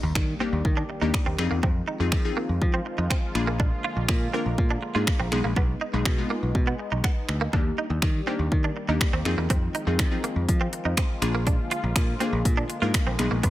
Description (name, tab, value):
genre	dance-pop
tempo	122 BPM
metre	4/4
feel	straight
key	unclear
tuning	A4 = 438 Hz
part	glassy wavetable pluck	accompaniment	0.0-13.5 s	Ab3 to Bb4	-30 LUFS	left 3 dB	chorus, sidechain pumping
part	sweeping resonant pad	sustained chords	0.0-13.5 s	D3 to D5	-36 LUFS	left 1 dB	chorus, sidechain pumping
part	direct-recorded clean electric guitar	riff	0.0-13.5 s	Bb3 to F4	-31 LUFS	right 5 dB	ensemble chorus
part	picked electric bass	bass	0.0-13.5 s	Bb1 to F3	-27 LUFS	equal	sidechain pumping
part	impact and noise sweep	sound effects	0.0-1.6, 13.4-13.5 s	none	-40 LUFS	equal	none
part	house drum kit	drums	0.2-13.5 s	finger snaps, hi-hat, kick drum	-24 LUFS	equal	overdrive
room	digital ambience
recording	none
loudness	-22 LUFS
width	side -15 dB against mid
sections	0.0-13.5 A section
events	impact 0.0-1.6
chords	0.0 Ebmaj7; 1.4 Fm7; 3.4 Bb7; 5.3 Abm; 7.5 Ebmaj7; 9.3 Fm7; 11.2 Bb7